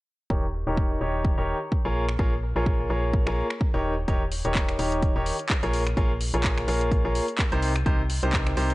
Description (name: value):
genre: piano house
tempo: 127 BPM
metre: 4/4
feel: swing 56% on 16ths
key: unclear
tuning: A4 = 440 Hz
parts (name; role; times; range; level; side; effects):
- bright baby grand piano; riff; 0.3-8.7 s; C3 to Db5; -27 LUFS; equal; sidechain pumping, low-pass filter, tape echo
- organ-like FM bass; bass; 0.3-8.7 s; Eb1 to C2; -28 LUFS; equal; tube saturation, sidechain pumping
- electronic kick drum; drums; 0.3-8.4 s; none; -25 LUFS; equal; overdrive
- house drum kit; drums; 2.1-8.7 s; finger snaps, handclaps, hi-hat; -31 LUFS; equal; overdrive
room: digital ambience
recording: dry, gritty hardware recording, cassette tape, nothing above 10.5 kHz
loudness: -22 LUFS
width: side -19 dB against mid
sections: 0.3-4.1 A section; 4.1-8.7 B section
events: filter sweep on FM bass 0.3-4.1; filter sweep on grand piano 0.3-4.1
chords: 0.3 Eb7; 5.7 Bbm7; 7.6 Cm7